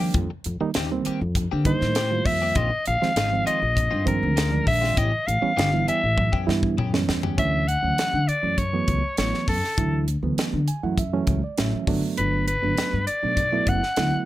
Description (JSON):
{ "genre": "electric jazz fusion", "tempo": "100 BPM", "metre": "4/4", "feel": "straight", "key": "D major from 7.4 s", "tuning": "A4 = 440 Hz", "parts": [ { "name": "bright reed electric piano", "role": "accompaniment", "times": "0.0-14.3 s", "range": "Eb3 to G#5", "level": "-27 LUFS", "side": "right 5 dB", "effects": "none" }, { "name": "clean electric guitar", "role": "stabs", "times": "0.0-7.4 s", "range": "Eb3 to G4", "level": "-33 LUFS", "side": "left 6 dB", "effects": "analog chorus" }, { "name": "upright bass", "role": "bass", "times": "0.0-14.2 s", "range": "F#1 to D3", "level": "-25 LUFS", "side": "left 1 dB", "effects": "none" }, { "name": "crisp fusion drum kit", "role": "drums", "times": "0.1-14.1 s", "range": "hi-hat, kick drum, snare drum, toms", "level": "-27 LUFS", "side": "left 1 dB", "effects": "none" }, { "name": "growling soprano saxophone", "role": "melody", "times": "1.7-14.3 s", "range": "A4 to F#5", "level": "-24 LUFS", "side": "left 1 dB", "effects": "slapback echo" } ], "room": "little or no reverb", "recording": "none", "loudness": "-20 LUFS", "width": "side -15 dB against mid", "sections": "0.0-7.4 A section; 7.4-14.3 B section", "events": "soprano saxophone solo 0.0-7.4; drum fill 6.2-7.4; reed electric piano fill 10.4-12.2", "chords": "0.0 F9sus4; 2.6 Bb9sus4; 5.0 A9; 7.4 Dmaj9; 11.9 Gmaj9", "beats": "| 0.15 0.75 1.36 1.96 | 2.56 3.17 3.77 4.37 | 4.97 5.58 6.18 6.78 | 7.38 7.98 8.58 9.18 | 9.78 10.38 10.98 11.58 | 12.17 12.77 13.37 13.97" }